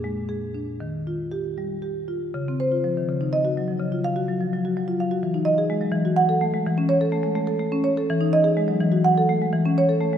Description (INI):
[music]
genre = classical, contemporary piece for solo marimba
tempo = 77-86 BPM (dotted quarters)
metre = 6/8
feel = rubato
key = unclear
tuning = A4 = 439 Hz
[part]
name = marimba with soft mallets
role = solo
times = 0.0-10.2 s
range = Bb2 to Gb5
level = -20 LUFS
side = equal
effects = none
[sound]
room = wet church reverb, RT60 2.7 s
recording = minimal, uncompressed stereo recording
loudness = -20 LUFS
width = side -9 dB against mid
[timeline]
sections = 0.0-2.3 A section; 2.3-10.2 B section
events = none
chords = 0.0 Bb7; 0.8 Ebadd9; 2.3 Dbmaj7; 3.1 Ebm9/Db; 3.8 Gb5/Db; 5.3 Emaj7; 6.0 Gbm9/Fb; 6.7 A/E; 8.1 Emaj7; 8.8 Gbm9/Fb; 9.5 A/E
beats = 0.05 | 0.81 1.58 | 2.34 3.08 | 3.81 4.53 | 5.25 5.97 | 6.68 7.38 | 8.10 8.81 | 9.53